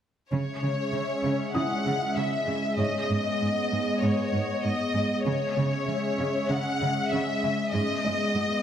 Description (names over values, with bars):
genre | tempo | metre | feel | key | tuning
cinematic, hybrid orchestral and electronic film score | 97 BPM | 4/4 | straight | C# minor | A4 = 439 Hz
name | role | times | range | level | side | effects
warm symphonic violin section | melody | 0.3-8.6 s | C#5 to F#5 | -29 LUFS | left 3 dB | none
hollow soft pad | sustained chords | 0.6-8.6 s | G#3 to E5 | -29 LUFS | equal | chorus
warm symphonic cello section | bass | 0.3-8.4 s | G#2 to C#3 | -30 LUFS | right 3 dB | none
warm grand piano | texture | 1.5-8.6 s | E4 to D#6 | -38 LUFS | left 1 dB | digital delay
room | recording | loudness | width
wet concert hall reverb, RT60 2.2 s | none | -24 LUFS | side -9 dB against mid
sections
0.3-8.6 A section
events
none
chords
0.3 C#m; 2.8 G#m; 5.3 C#m; 7.7 G#m